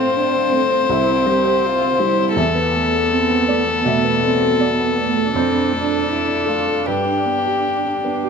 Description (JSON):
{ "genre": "neoclassical piano and strings", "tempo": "81 BPM", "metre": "4/4", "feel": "rubato", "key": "unclear", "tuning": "A4 = 440 Hz", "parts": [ { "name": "rich violin", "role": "melody", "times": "0.0-8.2 s", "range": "G4 to C5", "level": "-18 LUFS", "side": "left 6 dB", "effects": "none" }, { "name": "warm cello", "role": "second line", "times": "0.0-8.3 s", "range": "A3 to G4", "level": "-23 LUFS", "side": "right 9 dB", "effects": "none" }, { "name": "dark viola", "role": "accompaniment", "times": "0.0-8.2 s", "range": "B3 to D4", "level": "-25 LUFS", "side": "right 4 dB", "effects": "none" }, { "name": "felt-muted upright piano", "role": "accompaniment", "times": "0.0-8.3 s", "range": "C2 to G5", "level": "-21 LUFS", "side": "right 1 dB", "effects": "none" } ], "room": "moderate recital hall reverb, RT60 1.8 s", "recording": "close, detailed microphones", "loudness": "-15 LUFS", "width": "side -6 dB against mid", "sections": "0.0-8.3 A section", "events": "none", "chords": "0.0 F/A; 0.9 C; 2.4 Esus4; 5.3 Dm7/F; 6.9 G", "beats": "0.16 0.90 1.64 | 2.38 3.12 3.85 4.60 | 5.34 6.10 6.87 7.65" }